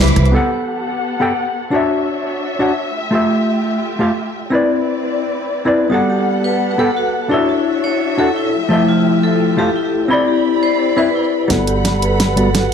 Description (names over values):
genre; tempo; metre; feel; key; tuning
liquid drum and bass; 172 BPM; 4/4; straight; G major; A4 = 440 Hz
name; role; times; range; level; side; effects
dark studio string section; sustained chords; 0.0-12.7 s; F3 to D6; -21 LUFS; left 2 dB; low-pass filter
vibraphone with hard mallets; arpeggios; 0.0-0.4, 5.9-12.7 s; E4 to C#5; -19 LUFS; left 1 dB; low-pass filter, ping-pong delay
upright bass; bass; 0.0-0.3, 11.5-12.7 s; G1 to D2; -16 LUFS; right 1 dB; none
pop drum kit; drums; 0.1-0.3, 11.5-12.6 s; hi-hat, rim click, snare drum; -18 LUFS; equal; none
hollow-body jazz guitar; accompaniment; 0.3-12.5 s; F3 to B5; -16 LUFS; left 1 dB; low-pass filter, ping-pong delay
electronic kick drum; drums; 11.5-12.6 s; none; -25 LUFS; right 1 dB; none
room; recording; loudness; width
moderate recital hall reverb, RT60 1.4 s, small room ambience; dark, warm production; -14 LUFS; side -7 dB against mid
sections
0.3-11.5 A section; 11.5-12.7 B section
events
band accent 0.0; build-up 11.5-12.7; drum fill 11.5-12.7; filter sweep on hollow-body jazz guitar 11.5-12.7; filter sweep on vibraphone 11.5-12.7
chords
0.3 Gmaj9; 1.7 Dmaj9; 3.0 Fmaj9; 4.5 Cmaj9; 5.9 Gmaj9; 7.3 Dmaj9; 8.5 Fmaj9; 10.1 Cmaj9; 11.5 Gmaj9